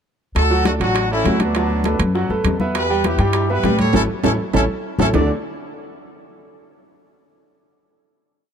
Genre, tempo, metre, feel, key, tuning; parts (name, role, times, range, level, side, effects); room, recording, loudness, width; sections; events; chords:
latin, salsa; 201 BPM; 4/4; straight; D major; A4 = 440 Hz
congas; percussion; 0.3-5.2 s; -25 LUFS; left 1 dB
brilliant horn section; melody; 0.4-5.3 s; B3 to D5; -22 LUFS; equal
upright bass; bass; 0.4-5.3 s; A1 to A2; -20 LUFS; equal
bongos; percussion; 0.4-5.2 s; -27 LUFS; left 9 dB
timbales; percussion; 0.4-5.2 s; -26 LUFS; right 8 dB
bright concert grand piano; accompaniment; 0.5-5.3 s; D3 to G5; -23 LUFS; right 3 dB
light reverb; dark, warm production; -16 LUFS; side -7 dB against mid
0.4-5.1 verse; 5.1-6.3 final chord
band accent 3.9-5.1; drum fill 4.2-5.1
0.4 D; 1.6 Bm7/D; 2.7 Em; 3.9 A; 5.1 D5